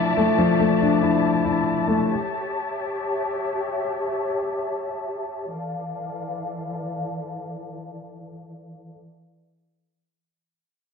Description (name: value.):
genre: hip hop.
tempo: free time.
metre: none.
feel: none.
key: D harmonic minor.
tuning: A4 = 441 Hz.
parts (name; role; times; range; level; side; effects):
dark baby grand piano; accompaniment; 0.0-2.1 s; F3 to E4; -19 LUFS; left 3 dB; none.
warm symphonic string section; sustained chords; 0.0-9.0 s; E3 to A5; -27 LUFS; left 2 dB; none.
room: moderate lush hall reverb, RT60 1.5 s, studio ambience.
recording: dark, warm production, low-pass filter.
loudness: -22 LUFS.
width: side -5 dB against mid.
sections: 0.0-5.5 A section; 5.5-9.0 B section.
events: filter sweep 0.0-5.5.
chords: 0.0 Dmadd9; 2.1 A7; 5.5 Dmadd9.